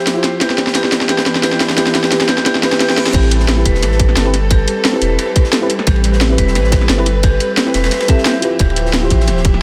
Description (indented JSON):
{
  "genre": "liquid drum and bass",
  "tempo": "176 BPM",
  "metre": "4/4",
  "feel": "swing 53% on 16ths",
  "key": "A minor",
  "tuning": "A4 = 444 Hz",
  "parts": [
    { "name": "warm studio string section", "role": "sustained chords", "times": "0.0-9.6 s", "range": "E3 to E5", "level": "-25 LUFS", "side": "equal", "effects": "sidechain pumping" },
    { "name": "vibraphone with hard mallets", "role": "arpeggios", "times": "0.0-9.6 s", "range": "G4 to E5", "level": "-24 LUFS", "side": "equal", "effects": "tape echo" },
    { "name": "mellow FM electric piano", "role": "accompaniment", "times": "0.1-9.6 s", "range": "C4 to C5", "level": "-22 LUFS", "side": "equal", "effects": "chorus, dub echo" },
    { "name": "crunchy breakbeat drum kit", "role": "drums", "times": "0.1-9.5 s", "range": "ride cymbal, snare drum", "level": "-27 LUFS", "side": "equal", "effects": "high-pass filter on cymbals, high-pass filter on snare, high-pass filter on room" },
    { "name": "drum and bass drum kit", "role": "drums", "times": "0.1-9.6 s", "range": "crash cymbal, hi-hat, snare drum", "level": "-18 LUFS", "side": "equal", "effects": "none" },
    { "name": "sub bass with octave", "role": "bass", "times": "0.4-9.6 s", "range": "D1 to A1", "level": "-17 LUFS", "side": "equal", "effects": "tube saturation, high-pass filter" },
    { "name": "reverse cymbal", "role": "sound effects", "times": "2.9-3.1 s", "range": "none", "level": "-32 LUFS", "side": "equal", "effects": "none" },
    { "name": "electronic kick drum", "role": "drums", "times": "3.1-9.5 s", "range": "none", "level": "-16 LUFS", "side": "equal", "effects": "none" }
  ],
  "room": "light reverb, studio reverb",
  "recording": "none",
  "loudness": "-14 LUFS",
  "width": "mono",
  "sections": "0.0-3.1 A section; 3.1-9.6 B section",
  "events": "build-up 0.0-3.1; drum fill 0.0-3.1; reverse cymbal 2.9; drop 3.1-9.6",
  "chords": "0.4 Em7; 3.1 Am9; 8.4 Dm11",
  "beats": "0.07 | 0.41 0.76 1.10 1.44 | 1.78 2.12 2.46 2.80 | 3.14 3.48 3.82 4.17 | 4.51 4.85 5.19 5.53 | 5.87 6.21 6.55 6.89 | 7.23 7.57 7.92 8.26 | 8.60 8.94 9.28 9.62"
}